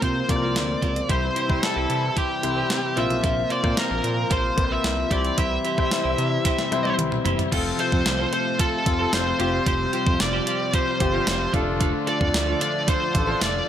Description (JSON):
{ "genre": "1980s-style pop", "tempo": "112 BPM", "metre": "4/4", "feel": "straight", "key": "unclear", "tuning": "A4 = 437 Hz", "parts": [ { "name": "high-gain lead guitar", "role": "melody", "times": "0.0-13.7 s", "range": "G4 to E5", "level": "-26 LUFS", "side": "equal", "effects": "distortion" }, { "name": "clear concert grand piano", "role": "accompaniment", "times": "0.0-13.7 s", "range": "G3 to C5", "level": "-28 LUFS", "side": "left 4 dB", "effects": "none" }, { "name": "chorused pulse-width pad", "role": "sustained chords", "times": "0.0-13.7 s", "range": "C3 to F4", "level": "-31 LUFS", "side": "left 1 dB", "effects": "none" }, { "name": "twelve-string electric guitar", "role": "riff", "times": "0.0-13.6 s", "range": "C4 to C5", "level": "-31 LUFS", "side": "right 4 dB", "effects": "wide subtle chorus" }, { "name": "smooth synth bass", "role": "bass", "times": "0.0-13.6 s", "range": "F1 to C3", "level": "-28 LUFS", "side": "right 1 dB", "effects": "none" }, { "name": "clean 12-bit digital drum machine", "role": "drums", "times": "0.0-13.5 s", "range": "crash cymbal, hi-hat, kick drum, snare drum, tambourine, toms", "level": "-25 LUFS", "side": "right 1 dB", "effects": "overdrive" }, { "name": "overdriven semi-hollow guitar", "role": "accompaniment", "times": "7.5-13.7 s", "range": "C3 to F4", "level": "-34 LUFS", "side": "equal", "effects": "none" } ], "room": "light reverb", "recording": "none", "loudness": "-20 LUFS", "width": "side -10 dB against mid", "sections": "0.0-7.5 A section; 7.5-13.7 B section", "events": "drum fill 6.5-7.5", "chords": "0.0 Bbsus2; 1.1 C; 3.0 Bbsus2; 5.1 C; 7.5 F; 9.4 Csus4/F; 11.5 Dm/F" }